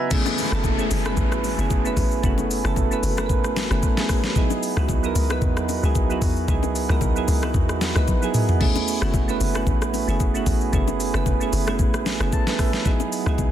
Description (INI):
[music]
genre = amapiano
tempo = 113 BPM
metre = 4/4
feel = swing 55% on 16ths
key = F# dorian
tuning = A4 = 441 Hz
[part]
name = soft electric-piano-like synth keys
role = accompaniment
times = 0.0-13.5 s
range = F#3 to B5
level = -24 LUFS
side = right 3 dB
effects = chorus, tremolo
[part]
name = glass harmonica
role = sustained chords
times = 0.0-13.5 s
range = A3 to B5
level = -33 LUFS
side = right 3 dB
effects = sidechain pumping
[part]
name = smooth R&B drum kit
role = drums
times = 0.1-13.5 s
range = crash cymbal, hi-hat, kick drum, rim click, shaker, snare drum, toms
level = -23 LUFS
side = equal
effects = none
[part]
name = congas and bongos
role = percussion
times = 0.1-13.5 s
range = none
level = -32 LUFS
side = left 10 dB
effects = none
[part]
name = downlifter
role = sound effects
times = 0.1-4.4 s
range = none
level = -32 LUFS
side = left 3 dB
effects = none
[part]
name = tight log drum bass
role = bass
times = 0.5-13.5 s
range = F#1 to E2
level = -24 LUFS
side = equal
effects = none
[sound]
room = light reverb, digital ambience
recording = dense, heavily limited modern master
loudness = -19 LUFS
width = side -11 dB against mid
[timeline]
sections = 0.1-13.5 A section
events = drum fill 8.1-8.6; synth keys fill 12.1-12.9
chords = 0.1 F#m11; 4.4 C#m11; 8.6 F#m11; 12.9 C#m11